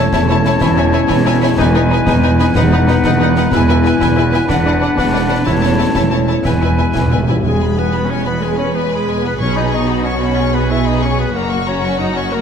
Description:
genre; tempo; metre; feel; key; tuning
cinematic, heroic adventure film score; 124 BPM (dotted quarters); 12/8; straight; E major; A4 = 440 Hz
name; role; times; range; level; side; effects
clear symphonic violin section; melody; 0.0-12.4 s; F#5 to C#6; -25 LUFS; left 4 dB; none
mellow clarinet; second line; 0.0-12.4 s; D4 to E5; -23 LUFS; left 2 dB; none
silver concert flute; second line; 0.0-7.2 s; F#5 to A5; -23 LUFS; left 3 dB; none
warm oboe; second line; 0.0-7.2 s; B4 to C#5; -24 LUFS; equal; none
warm symphonic violin section; second line; 0.0-12.4 s; F#4 to C#5; -23 LUFS; left 2 dB; none
rich symphonic viola section; accompaniment; 0.0-12.4 s; G#3 to E4; -22 LUFS; left 1 dB; none
mellow French horn section; sustained chords; 0.0-7.3 s; G#3 to E4; -20 LUFS; left 7 dB; none
rich symphonic double bass section; bass; 0.0-12.4 s; E1 to B1; -19 LUFS; right 3 dB; none
warm symphonic cello section; bass; 0.0-12.4 s; E2 to B2; -19 LUFS; right 2 dB; none
concert snare drum and concert bass drum; drums; 0.1-7.1 s; none; -22 LUFS; equal; none
timpani; percussion; 1.6-9.9 s; E2 to B2; -22 LUFS; left 2 dB; none
room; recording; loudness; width
moderate scoring stage reverb, RT60 1.9 s; none; -12 LUFS; side -7 dB against mid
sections
0.0-7.5 A section; 7.5-12.4 B section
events
timpani fill 6.5-7.5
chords
0.0 A/E; 0.6 C#m/E; 1.6 G#m/E; 2.6 B/E; 3.5 E; 4.5 Bm/E; 5.5 A/E; 6.5 E; 9.4 Bsus2; 11.4 F#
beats
0.14 0.62 1.10 | 1.59 2.07 2.56 3.04 | 3.53 4.01 4.50 4.98 | 5.47 5.96 6.46 6.96 | 7.46 7.95 8.43 8.92 | 9.41 9.90 10.38 10.87 | 11.36 11.84 12.32

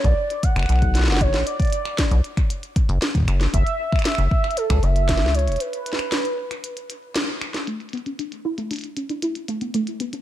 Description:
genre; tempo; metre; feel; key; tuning
IDM; 116 BPM; 4/4; straight; B minor; A4 = 440 Hz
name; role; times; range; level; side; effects
warm velvety synth lead; melody; 0.0-7.2 s; A4 to F#5; -25 LUFS; right 1 dB; chorus, tape echo
deep acid bass; bass; 0.0-5.6 s; E1 to C#2; -19 LUFS; equal; none
electronic kick drum; drums; 0.0-5.2 s; none; -21 LUFS; equal; none
glitchy drum kit; drums; 0.0-10.2 s; finger snaps, hi-hat, snare drum; -26 LUFS; equal; low-pass filter on snare, low-pass filter on hats, low-pass filter on room
warbly dusty pluck; arpeggios; 7.7-10.2 s; A3 to E4; -26 LUFS; right 1 dB; ensemble chorus, vintage 12-bit sampler grit, ping-pong delay
room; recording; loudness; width
light reverb, digital ambience; none; -20 LUFS; side -13 dB against mid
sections
0.0-7.7 A section; 7.7-10.2 B section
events
break 5.6-7.7; band accent 7.2; filter sweep on drum 7.7-10.2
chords
0.0 Bm; 3.5 F#5; 5.6 N.C.; 7.7 Bm11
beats
0.43 0.95 | 1.47 1.98 2.50 3.02 | 3.54 4.05 4.57 5.09 | 5.61 6.12 6.64 7.16 | 7.67 8.19 8.71 9.22 | 9.74

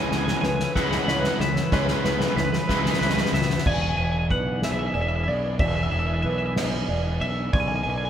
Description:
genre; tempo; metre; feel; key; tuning
post-rock; 62 BPM (dotted quarters); 6/8; straight; unclear; A4 = 441 Hz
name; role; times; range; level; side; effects
twelve-string electric guitar; melody; 0.0-8.1 s; B4 to G#5; -28 LUFS; equal; none
lush unison pad; sustained chords; 0.4-8.1 s; E3 to E5; -34 LUFS; equal; chorus, phaser
felt-muted upright piano; arpeggios; 0.0-8.1 s; B4 to E5; -34 LUFS; right 3 dB; none
twangy electric guitar; arpeggios; 0.0-3.7 s; C#3 to B4; -33 LUFS; left 2 dB; none
overdriven semi-hollow guitar; riff; 0.0-3.6 s; C#3 to G#3; -29 LUFS; left 6 dB; none
raw garage guitar; riff; 0.0-3.6 s; C#3 to G#3; -29 LUFS; right 7 dB; overdrive
growling fingered electric bass; bass; 0.1-8.1 s; E1 to C#2; -27 LUFS; equal; overdrive
soft-mallet drum kit; drums; 0.1-8.0 s; crash cymbal, kick drum, ride cymbal, snare drum; -27 LUFS; left 1 dB; none
room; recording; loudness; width
moderate large studio reverb, RT60 1.4 s; band playing live in one room; -21 LUFS; side -9 dB against mid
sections
0.0-3.7 A section; 3.7-8.1 B section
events
build-up 0.0-3.7; drum fill 0.0-3.7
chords
0.0 C#m7; 3.7 E7; 7.5 Bm7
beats
0.76 | 1.72 2.69 | 3.66 4.63 | 5.60 6.57 | 7.53

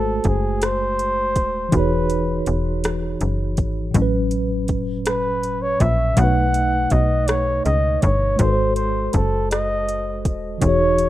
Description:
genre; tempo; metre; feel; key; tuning
slow six-eight R&B; 54 BPM (dotted quarters); 6/8; straight; unclear; A4 = 440 Hz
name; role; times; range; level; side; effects
breathy flugelhorn; melody; 0.0-11.1 s; G#4 to F#5; -22 LUFS; equal; none
mellow tine electric piano; accompaniment; 0.0-11.1 s; A2 to C#5; -24 LUFS; equal; medium stereo tremolo
slap-like FM bass; bass; 0.0-11.1 s; D#1 to C#2; -22 LUFS; equal; none
smooth R&B drum kit; drums; 0.2-11.1 s; hi-hat, kick drum, rim click; -22 LUFS; equal; overdrive
room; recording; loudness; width
little or no reverb; rough home demo mix; -17 LUFS; side -14 dB against mid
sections
0.0-11.1 A section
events
none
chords
0.0 G#7b9; 1.7 Emaj13; 3.9 A69; 6.2 B7; 8.4 G#7b9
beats
0.61 | 1.73 2.84 | 3.95 5.06 | 6.17 7.28 | 8.39 9.50 | 10.62

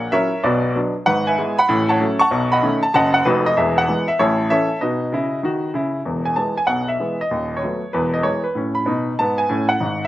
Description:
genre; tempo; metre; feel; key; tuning
jazz, stride piano; 192 BPM; 4/4; swing 66% on 8ths; E major; A4 = 440 Hz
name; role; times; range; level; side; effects
clear grand piano; solo; 0.0-10.1 s; D#1 to C#6; -17 LUFS; equal; slapback echo
room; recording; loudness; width
little or no reverb; recorded outdoors, with no room sound, lossy compression artefacts; -17 LUFS; side -15 dB against mid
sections
0.0-6.1 A section; 6.1-10.1 B section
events
none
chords
0.4 Bm; 1.1 E/G#; 1.7 F#m/A; 2.3 B9; 3.6 E; 4.2 A; 4.8 B; 6.1 E; 7.3 B7/D#; 7.9 E; 8.6 Amaj7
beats
0.13 0.44 0.76 | 1.07 1.38 1.69 2.00 | 2.32 2.63 2.94 3.25 | 3.57 3.88 4.19 4.50 | 4.81 5.12 5.44 5.75 | 6.06 6.37 6.68 7.00 | 7.31 7.62 7.93 8.25 | 8.56 8.87 9.19 9.50 | 9.81

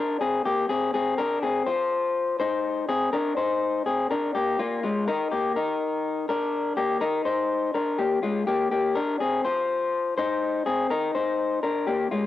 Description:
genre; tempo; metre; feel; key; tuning
indie pop; 124 BPM; 4/4; straight; unclear; A4 = 440 Hz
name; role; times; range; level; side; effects
electric guitar through a small old amp; solo; 0.0-12.3 s; Ab3 to C5; -23 LUFS; left 3 dB; none
room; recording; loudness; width
moderate spring reverb, RT60 2.1 s; home recording on cassette; -23 LUFS; side -13 dB against mid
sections
0.0-12.3 A section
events
none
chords
0.0 Ab; 1.2 Bbadd9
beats
0.22 0.70 | 1.19 1.67 2.16 2.65 | 3.13 3.62 4.10 4.59 | 5.08 5.56 6.05 6.53 | 7.02 7.51 7.99 8.48 | 8.96 9.45 9.94 10.42 | 10.91 11.39 11.88

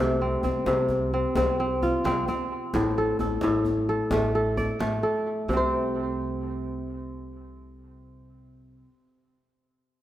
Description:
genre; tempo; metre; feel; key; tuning
west african traditional, West African string and xylophone music; 87 BPM (dotted quarters); 12/8; straight; unclear; A4 = 436 Hz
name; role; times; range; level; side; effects
kora; arpeggios; 0.0-9.0 s; A2 to D5; -25 LUFS; equal; tape echo
upright bass; bass; 0.0-8.8 s; A1 to C2; -33 LUFS; equal; none
djembe; percussion; 0.2-5.7 s; none; -32 LUFS; left 2 dB; none
room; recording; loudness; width
wet lush hall reverb, RT60 2.4 s; rough home demo mix; -23 LUFS; side -13 dB against mid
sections
0.0-5.5 A section; 5.5-8.2 B section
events
none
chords
0.0 Csus4; 2.7 Am; 5.5 N.C.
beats
0.67 1.36 2.05 | 2.74 3.43 4.12 4.80 | 5.49 6.18 6.87 7.56

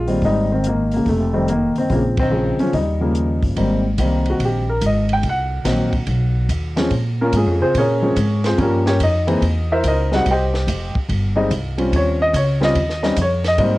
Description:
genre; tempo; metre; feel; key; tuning
jazz piano trio; 144 BPM; 4/4; swing 66% on 8ths; Ab major; A4 = 440 Hz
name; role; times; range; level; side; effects
warm baby grand piano; melody; 0.0-13.8 s; C3 to G5; -18 LUFS; left 1 dB; cassette tape, plate reverb
upright bass; bass; 0.0-13.8 s; F1 to Bb2; -20 LUFS; equal; none
compact cocktail drum kit; drums; 0.1-13.7 s; hi-hat, kick drum, ride cymbal, snare drum; -27 LUFS; equal; cassette tape
room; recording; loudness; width
light reverb; home recording on cassette; -16 LUFS; side -18 dB against mid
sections
0.0-3.6 A section; 3.6-13.8 B section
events
band accent 2.1; grand piano solo 3.6-13.8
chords
0.2 Abmaj9; 1.1 F7; 1.9 Bbm7; 2.7 Eb7; 3.6 Abmaj9; 5.2 Cm7b5; 6.1 B; 6.9 Bbm9; 8.6 Gm7b5; 9.4 C7#9; 10.3 F7sus2; 11.9 Eb13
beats
| 0.22 0.64 1.06 1.48 | 1.90 2.31 2.73 3.15 | 3.57 3.99 4.41 4.82 | 5.24 5.66 6.08 6.50 | 6.91 7.33 7.75 8.17 | 8.58 9.00 9.42 9.84 | 10.25 10.67 11.09 11.51 | 11.92 12.34 12.76 13.18 | 13.59

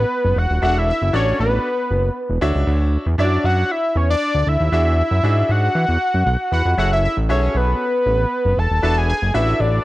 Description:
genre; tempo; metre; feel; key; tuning
early-eighties boogie funk; 117 BPM; 4/4; straight; F# minor; A4 = 441 Hz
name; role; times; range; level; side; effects
fat analog lead; melody; 0.0-9.8 s; B4 to A5; -19 LUFS; equal; chorus, slapback echo
fat analog bass; bass; 0.0-9.8 s; D#1 to E3; -18 LUFS; equal; none
clear grand piano; accompaniment; 0.6-9.8 s; C#4 to B5; -25 LUFS; equal; none
room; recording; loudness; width
little or no reverb; none; -16 LUFS; side -17 dB against mid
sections
0.0-6.8 A section; 6.8-9.8 A section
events
grand piano fill 6.0-6.8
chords
0.0 F#7(no3); 0.6 E9sus4; 2.4 Dmaj9; 4.7 E9; 6.8 F#m9; 8.8 E9sus4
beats
0.11 | 0.62 1.14 1.65 2.16 | 2.67 3.19 3.70 4.21 | 4.72 5.24 5.75 6.26 | 6.78 7.29 7.80 8.31 | 8.83 9.34

